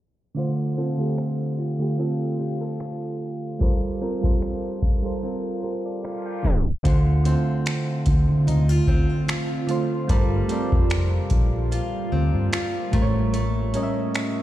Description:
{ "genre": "contemporary R&B", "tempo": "74 BPM", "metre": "4/4", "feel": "swing 54% on 16ths", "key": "unclear", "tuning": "A4 = 439 Hz", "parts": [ { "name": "soft electric-piano-like synth keys", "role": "accompaniment", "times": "0.3-14.4 s", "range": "A2 to G5", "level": "-26 LUFS", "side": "right 2 dB", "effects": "chorus" }, { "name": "fingerpicked steel-string acoustic guitar", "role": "arpeggios", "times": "0.4-14.4 s", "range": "D3 to Bb4", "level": "-30 LUFS", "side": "left 2 dB", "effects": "digital delay" }, { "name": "booming analog drum machine", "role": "drums", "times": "1.2-14.4 s", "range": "finger snaps, hi-hat, kick drum", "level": "-22 LUFS", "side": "equal", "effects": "none" }, { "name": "ethereal airy pad", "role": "sustained chords", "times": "7.9-14.4 s", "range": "D3 to G4", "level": "-30 LUFS", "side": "right 2 dB", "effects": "ensemble chorus, built-in reverb, phaser" }, { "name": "vintage muted fingered electric bass", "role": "bass", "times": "6.9-13.7 s", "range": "F1 to D3", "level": "-22 LUFS", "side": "equal", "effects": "none" } ], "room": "light reverb", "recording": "played on a big sound system in a bare room, stone room reverb, low-pass filter, tape stop", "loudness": "-21 LUFS", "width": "side -14 dB against mid", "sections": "0.4-6.8 A section; 6.8-14.4 B section", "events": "filter sweep 0.4-6.8; tape stop 6.4-6.8", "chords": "0.4 Dm7; 3.6 Gm11; 6.8 Dm7; 10.1 Gm11; 12.9 A7b9" }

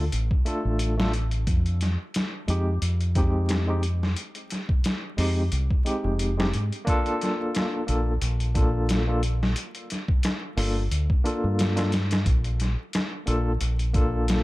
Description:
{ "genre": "trip hop", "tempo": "89 BPM", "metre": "4/4", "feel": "swing 55% on 16ths", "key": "unclear", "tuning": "A4 = 440 Hz", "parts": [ { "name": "barky tine electric piano", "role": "accompaniment", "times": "0.0-14.4 s", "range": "Ab3 to A4", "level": "-29 LUFS", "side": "equal", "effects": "overdrive, tremolo, tape echo" }, { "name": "deep dub fingered electric bass", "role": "bass", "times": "0.0-14.4 s", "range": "F1 to Ab2", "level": "-24 LUFS", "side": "equal", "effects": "none" }, { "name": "trip hop sampler-style drum kit", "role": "drums", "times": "0.1-14.4 s", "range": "hi-hat, kick drum, snare drum", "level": "-26 LUFS", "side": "equal", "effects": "none" } ], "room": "little or no reverb", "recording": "dark, warm production, vinyl crackle", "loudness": "-22 LUFS", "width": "side -19 dB against mid", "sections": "0.0-6.9 A section; 6.9-14.4 B section", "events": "none", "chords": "0.0 Dm; 1.5 Fm7; 6.9 Bbmaj7; 9.6 Gm7; 12.3 Bbmaj7" }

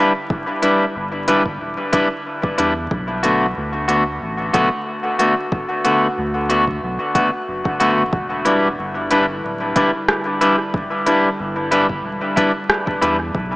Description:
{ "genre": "ambient dub", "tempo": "92 BPM", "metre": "4/4", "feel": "swing 54% on 16ths", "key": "E minor", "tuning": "A4 = 440 Hz", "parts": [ { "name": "warbly tape-like pad", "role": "sustained chords", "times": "0.0-13.6 s", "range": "D3 to B4", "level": "-31 LUFS", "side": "equal", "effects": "chorus, built-in reverb" }, { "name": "clean electric guitar", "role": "stabs", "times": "0.0-13.2 s", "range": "D3 to B4", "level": "-17 LUFS", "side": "left 1 dB", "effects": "dub echo" }, { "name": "electronic kick drum", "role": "drums", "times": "0.3-13.5 s", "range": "none", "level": "-23 LUFS", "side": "equal", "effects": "none" }, { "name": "organic electronic drum kit", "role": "drums", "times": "0.6-13.2 s", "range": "hi-hat, rim click", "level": "-22 LUFS", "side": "equal", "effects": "dub echo" }, { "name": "soft dub sub bass", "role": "bass", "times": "1.0-13.6 s", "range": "D1 to E2", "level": "-28 LUFS", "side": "equal", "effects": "none" } ], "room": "moderate lush hall reverb, RT60 1.9 s", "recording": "vinyl crackle, small speaker sound", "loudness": "-16 LUFS", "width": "side -21 dB against mid", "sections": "0.0-13.6 A section", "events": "fade-in on ambient pad 0.0-13.6", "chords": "0.0 Em7; 2.9 Bm7; 8.1 Em7" }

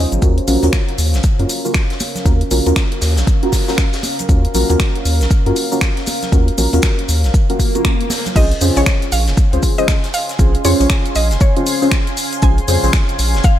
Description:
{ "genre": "deep house", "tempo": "118 BPM", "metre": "4/4", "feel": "swing 61% on 16ths", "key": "Bb minor", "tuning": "A4 = 440 Hz", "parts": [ { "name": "deep dark ambient pad", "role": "sustained chords", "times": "0.0-13.6 s", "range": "Db4 to C6", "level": "-26 LUFS", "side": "right 1 dB", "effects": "chorus, built-in reverb, sidechain pumping" }, { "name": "deep mellow chord stab", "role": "stabs", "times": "0.0-13.6 s", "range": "Db4 to Eb5", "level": "-20 LUFS", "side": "equal", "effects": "chorus, phaser, sidechain pumping, tape echo" }, { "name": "round analog bass", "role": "bass", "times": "0.0-13.4 s", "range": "F1 to Gb2", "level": "-16 LUFS", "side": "equal", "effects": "sidechain pumping" }, { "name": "deep house drum kit", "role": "drums", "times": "0.1-13.6 s", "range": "crash cymbal, finger snaps, hi-hat, shaker", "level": "-22 LUFS", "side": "left 1 dB", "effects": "small room ambience" }, { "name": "congas", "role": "percussion", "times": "0.1-8.3 s", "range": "none", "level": "-26 LUFS", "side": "right 2 dB", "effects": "none" }, { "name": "electronic kick drum", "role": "drums", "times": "0.2-13.6 s", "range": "none", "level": "-14 LUFS", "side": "equal", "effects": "small room ambience" }, { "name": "oversized low-tuned drum kit", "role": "drums", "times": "0.2-13.6 s", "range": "hi-hat, shaker, snare drum", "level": "-29 LUFS", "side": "left 1 dB", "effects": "high-pass filter on hats, small room ambience, high-pass filter on snare, high-pass filter on perc, high-pass filter on room" }, { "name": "swell", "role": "sound effects", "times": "7.5-8.4 s", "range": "none", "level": "-26 LUFS", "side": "left 2 dB", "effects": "none" }, { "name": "mallet-like synth pluck", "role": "melody", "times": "8.4-13.6 s", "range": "Db5 to Ab5", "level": "-23 LUFS", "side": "equal", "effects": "chorus, dub echo" } ], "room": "small room ambience", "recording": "none", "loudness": "-13 LUFS", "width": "side -12 dB against mid", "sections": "0.0-8.4 A section; 8.4-13.6 B section", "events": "swell 7.5-8.4; drop 8.4-13.6", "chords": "0.2 Ebm9; 8.4 Bbm9" }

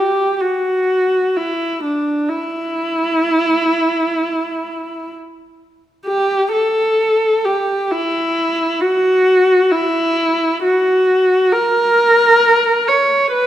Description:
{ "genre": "classical, free, expressive piece for unaccompanied viola", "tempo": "free time", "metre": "none", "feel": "none", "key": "unclear", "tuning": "A4 = 443 Hz", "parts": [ { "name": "warm viola", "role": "solo", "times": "0.0-13.5 s", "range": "D4 to C#5", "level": "-13 LUFS", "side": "equal", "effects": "none" } ], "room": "moderate recital hall reverb, RT60 1.7 s", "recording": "none", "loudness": "-13 LUFS", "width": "side -12 dB against mid", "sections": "0.0-13.5 A section", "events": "none", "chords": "none" }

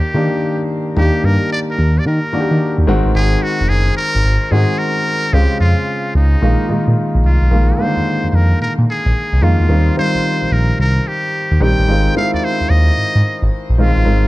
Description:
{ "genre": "R&B, new jack swing", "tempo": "110 BPM", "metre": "4/4", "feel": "swing 66% on 16ths", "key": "Eb major", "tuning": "A4 = 439 Hz", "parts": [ { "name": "trumpet with metal mute", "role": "melody", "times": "0.0-14.3 s", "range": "Eb4 to G5", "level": "-21 LUFS", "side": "equal", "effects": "none" }, { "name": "warm concert grand piano", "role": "accompaniment", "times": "0.0-14.3 s", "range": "Db3 to G4", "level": "-18 LUFS", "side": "equal", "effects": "none" }, { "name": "smooth gliding synth bass", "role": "bass", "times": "0.1-14.3 s", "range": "F1 to Eb3", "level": "-14 LUFS", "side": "equal", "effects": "none" } ], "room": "studio reverb", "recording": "dry, close 1970s-style studio recording", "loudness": "-12 LUFS", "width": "side -18 dB against mid", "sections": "0.0-7.5 A section; 7.5-14.3 B section", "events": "none", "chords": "0.0 Ebmaj7; 2.9 Ab7; 5.3 Dbmaj7; 6.4 Bb7sus4; 9.7 Eb69; 11.9 Ab6" }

